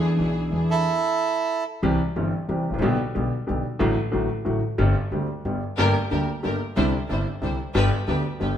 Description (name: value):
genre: tango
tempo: 183 BPM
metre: 3/4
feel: rubato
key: C major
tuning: A4 = 440 Hz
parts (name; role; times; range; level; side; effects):
- warm concert grand piano; accompaniment; 0.0-8.5 s; G1 to G#4; -23 LUFS; equal; none
- dark studio string section; stabs; 0.0-0.8, 5.8-8.5 s; D4 to C5; -29 LUFS; left 1 dB; none
- upright bass; bass; 0.0-8.5 s; G1 to E2; -27 LUFS; equal; none
- bandoneon; melody; 0.7-1.6 s; E4 to A4; -23 LUFS; right 5 dB; none
room: wet stone room reverb, RT60 1.2 s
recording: band playing live in one room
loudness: -21 LUFS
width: side -9 dB against mid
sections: 0.0-1.8 A section; 1.8-8.6 B section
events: none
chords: 0.0 E7; 0.8 N.C.; 1.8 C; 2.8 G/B; 3.8 D/A; 4.8 Gsus4; 5.4 G; 5.8 Gm; 6.8 Cadd9; 7.7 G